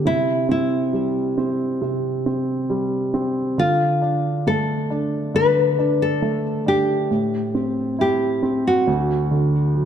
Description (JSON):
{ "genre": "pop", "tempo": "68 BPM", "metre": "4/4", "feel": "straight", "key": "unclear", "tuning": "A4 = 440 Hz", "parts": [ { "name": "nylon-string guitar", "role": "melody", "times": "0.0-9.9 s", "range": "E4 to B4", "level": "-21 LUFS", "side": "left 1 dB", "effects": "none" }, { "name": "warm upright piano", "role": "accompaniment", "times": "0.0-9.9 s", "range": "D2 to E4", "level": "-21 LUFS", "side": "right 1 dB", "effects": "none" } ], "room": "moderate scoring stage reverb, RT60 1.7 s", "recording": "dark, warm production", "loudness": "-18 LUFS", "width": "side -8 dB against mid", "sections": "0.0-9.9 A section", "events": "none", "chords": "0.0 C; 3.6 Dm; 7.1 Am; 8.9 D" }